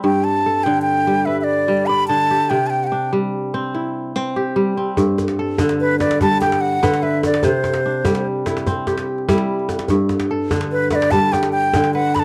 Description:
west african traditional, West African string and xylophone music; 97 BPM (dotted quarters); 12/8; straight; G major; A4 = 440 Hz
breathy reedy wooden flute; melody; 0.0-12.2 s; B4 to B5; -20 LUFS; equal
kora; arpeggios; 0.0-12.2 s; G2 to D5; -21 LUFS; equal
djembe; percussion; 5.0-12.2 s; -25 LUFS; equal
small room reverb; dry, close 1970s-style studio recording; -18 LUFS; mono
0.0-5.0 A section; 5.0-12.2 B section
0.0 G; 2.5 C; 5.0 G; 7.4 C; 9.9 G
| 0.04 0.66 1.28 1.89 | 2.51 3.13 3.75 4.36 | 4.98 5.59 6.21 6.83 | 7.44 8.06 8.68 9.29 | 9.91 10.52 11.14 11.76

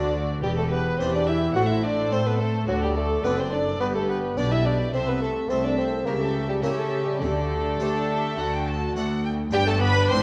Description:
classical, baroque-style concerto movement with solo episodes; 106 BPM; 4/4; straight; G major; A4 = 440 Hz
mellow bassoon; melody; 0.0-10.2 s; F#3 to F#4; -30 LUFS; equal
warm studio violin section; melody; 0.0-10.2 s; B4 to C6; -35 LUFS; equal
rich chamber violin section; second line; 0.0-10.2 s; F#4 to F#5; -33 LUFS; equal
harpsichord; accompaniment; 0.0-10.2 s; C2 to G4; -36 LUFS; equal
warm studio viola section; accompaniment; 0.0-10.2 s; D4 to A4; -34 LUFS; equal
rich chamber double bass section; bass; 0.0-10.2 s; E1 to D3; -32 LUFS; equal
warm chamber cello section; bass; 0.0-10.2 s; C2 to D4; -32 LUFS; equal
wet recital hall reverb, RT60 1.5 s; worn, warbling old tape, cassette tape, warbly pitch drift; -24 LUFS; mono
0.0-9.5 A section
0.4 Em7; 1.6 Am; 2.7 D7; 3.8 G; 4.9 Am/C; 6.1 C#dim; 7.2 Dsus4; 8.4 D; 9.5 G
| 0.43 0.99 1.55 2.12 | 2.68 3.25 3.81 4.37 | 4.94 5.50 6.07 6.63 | 7.21 7.80 8.38 8.96 | 9.54 10.11

